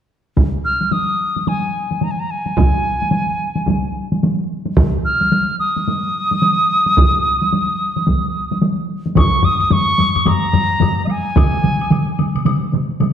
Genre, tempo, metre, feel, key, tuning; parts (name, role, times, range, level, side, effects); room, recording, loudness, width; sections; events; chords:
japanese traditional, taiko drum ensemble; 109 BPM; 4/4; swing 60% on 16ths; Eb suspended pentatonic; A4 = 439 Hz
taiko ensemble; percussion; 0.4-13.1 s; -20 LUFS; left 1 dB
taiko ensemble; percussion; 0.4-11.5 s; -17 LUFS; right 1 dB
piccolo; melody; 0.6-12.2 s; Eb5 to F6; -18 LUFS; equal
taiko ensemble; percussion; 9.2-11.0 s; -18 LUFS; left 5 dB
woodblock; percussion; 9.2-13.1 s; -29 LUFS; left 6 dB
taiko ensemble; percussion; 11.4-13.1 s; -18 LUFS; right 3 dB
wet recital hall reverb, RT60 1.3 s; -14 LUFS; side -9 dB against mid
0.4-9.2 A section; 9.2-13.1 B section